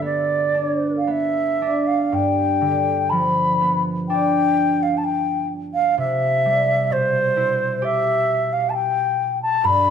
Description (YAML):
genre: celtic folk, Celtic slow air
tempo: 55-66 BPM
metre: 4/4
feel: rubato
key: G mixolydian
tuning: A4 = 440 Hz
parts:
  - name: baroque flute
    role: melody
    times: 0.0-9.9 s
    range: C5 to B5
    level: -19 LUFS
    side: left 1 dB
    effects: none
  - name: concert harp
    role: accompaniment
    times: 0.0-9.9 s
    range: G2 to G4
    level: -23 LUFS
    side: right 2 dB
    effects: none
room: moderate recital hall reverb, RT60 1.7 s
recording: none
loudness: -18 LUFS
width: side -7 dB against mid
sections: 0.0-2.1 A section; 2.1-9.9 B section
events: none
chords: 0.0 G6; 2.1 G7; 6.0 Cmaj7